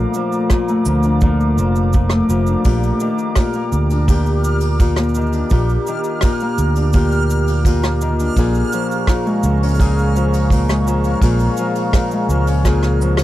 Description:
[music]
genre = folktronica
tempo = 84 BPM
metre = 4/4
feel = straight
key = unclear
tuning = A4 = 445 Hz
[part]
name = warbly tape-like pad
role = sustained chords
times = 0.0-13.2 s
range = A3 to D6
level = -25 LUFS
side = right 2 dB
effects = chorus, built-in reverb
[part]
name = Celtic harp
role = arpeggios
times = 0.0-13.2 s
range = Bb2 to Ab4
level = -19 LUFS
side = left 2 dB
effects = tape echo
[part]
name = fingered electric bass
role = bass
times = 0.0-13.2 s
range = F1 to D2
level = -17 LUFS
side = right 1 dB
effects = none
[part]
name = soft brush drum kit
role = drums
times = 0.1-13.2 s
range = cabasa, hi-hat, rim click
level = -27 LUFS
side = equal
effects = none
[part]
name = kick drum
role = drums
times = 0.5-12.8 s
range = none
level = -15 LUFS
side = right 1 dB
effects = none
[part]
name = backwards swelling texture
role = texture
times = 3.5-13.2 s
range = F6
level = -30 LUFS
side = right 3 dB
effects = built-in reverb
[sound]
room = small room ambience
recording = dry, close 1970s-style studio recording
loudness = -14 LUFS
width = side -14 dB against mid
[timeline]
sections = 0.0-13.2 A section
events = drum fill 12.6-13.2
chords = 0.0 Bbmaj7; 2.6 Ebmaj7/Bb; 8.4 Db6/Bb

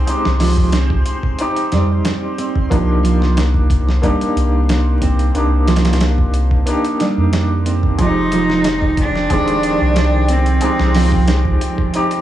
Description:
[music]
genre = trip hop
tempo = 91 BPM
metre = 4/4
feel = straight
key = F dorian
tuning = A4 = 443 Hz
[part]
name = felt-muted upright piano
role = accompaniment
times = 0.0-12.2 s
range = Eb3 to G4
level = -20 LUFS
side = left 1 dB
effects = tremolo, tape echo
[part]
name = nylon-string guitar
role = arpeggios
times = 0.0-11.3 s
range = F3 to C4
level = -22 LUFS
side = right 4 dB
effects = tape echo
[part]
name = soft dub sub bass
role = bass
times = 0.0-11.6 s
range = Eb1 to F2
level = -16 LUFS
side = equal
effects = transformer saturation
[part]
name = backwards swelling texture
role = texture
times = 0.0-8.0 s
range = C4 to C5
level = -31 LUFS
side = right 2 dB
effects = built-in reverb
[part]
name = dusty soul sampler-style drum kit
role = drums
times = 0.1-12.2 s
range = hi-hat, kick drum, snare drum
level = -19 LUFS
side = equal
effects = studio reverb
[part]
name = rich cello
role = melody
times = 8.0-11.6 s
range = C4 to Eb4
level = -19 LUFS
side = right 2 dB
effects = dub echo
[part]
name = warbly tape-like pad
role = sustained chords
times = 8.7-12.2 s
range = F3 to G5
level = -25 LUFS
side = equal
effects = chorus, built-in reverb
[sound]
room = little or no reverb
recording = dry, gritty hardware recording, vinyl crackle, studio reverb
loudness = -13 LUFS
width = side -12 dB against mid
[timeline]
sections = 0.0-8.0 A section; 8.0-12.2 B section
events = none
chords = 0.0 Fm7; 2.7 Cm7; 8.0 Fm7

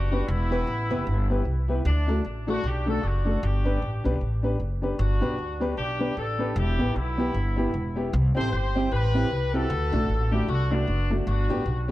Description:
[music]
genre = ska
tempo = 153 BPM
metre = 4/4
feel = swing 60% on 8ths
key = G major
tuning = A4 = 440 Hz
[part]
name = warm horn section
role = melody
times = 0.0-11.9 s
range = A3 to C5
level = -31 LUFS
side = left 1 dB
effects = analog delay
[part]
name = upright bass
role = bass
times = 0.0-11.9 s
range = E1 to D2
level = -25 LUFS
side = equal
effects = none
[part]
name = mellow electric guitar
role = accompaniment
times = 0.1-11.6 s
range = A3 to G4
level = -33 LUFS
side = right 2 dB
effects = wide subtle chorus, analog delay
[part]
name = dark upright piano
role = stabs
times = 0.1-11.9 s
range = A3 to B4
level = -31 LUFS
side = left 2 dB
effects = none
[sound]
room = light reverb, small room ambience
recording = none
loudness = -23 LUFS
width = side -16 dB against mid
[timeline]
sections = 0.0-5.0 A section; 5.0-11.9 B section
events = none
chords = 0.3 Em; 1.9 D; 3.4 G; 6.6 Em; 8.1 C; 9.7 D; 11.3 G

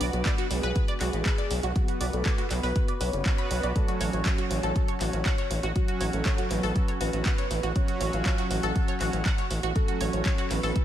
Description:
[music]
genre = melodic techno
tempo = 120 BPM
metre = 4/4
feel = straight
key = F# minor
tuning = A4 = 439 Hz
[part]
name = soft octave-layered synth lead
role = melody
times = 0.0-10.8 s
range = F#4 to F#5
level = -35 LUFS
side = left 2 dB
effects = chorus, phaser, sidechain pumping, diffuse ambient delay
[part]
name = tight sequenced synth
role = arpeggios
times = 0.0-10.7 s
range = F#4 to B5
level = -34 LUFS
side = right 1 dB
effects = chorus, phaser, sidechain pumping, ping-pong delay
[part]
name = brassy analog pad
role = stabs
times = 0.0-10.8 s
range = F#3 to B4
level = -34 LUFS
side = right 3 dB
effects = chorus, tremolo, sidechain pumping, ping-pong delay
[part]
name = gritty driven synth bass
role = bass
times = 0.0-10.7 s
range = F#1 to B1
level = -29 LUFS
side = equal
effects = sidechain pumping
[part]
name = punchy analog drum machine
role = drums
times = 0.0-10.8 s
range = handclaps, hi-hat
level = -35 LUFS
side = equal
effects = none
[part]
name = electronic kick drum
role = drums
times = 0.3-10.8 s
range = none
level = -26 LUFS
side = equal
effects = none
[sound]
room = light reverb, digital ambience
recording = none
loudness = -24 LUFS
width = side -11 dB against mid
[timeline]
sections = 0.0-10.8 A section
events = none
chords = 0.0 Bm; 3.8 F#m/A

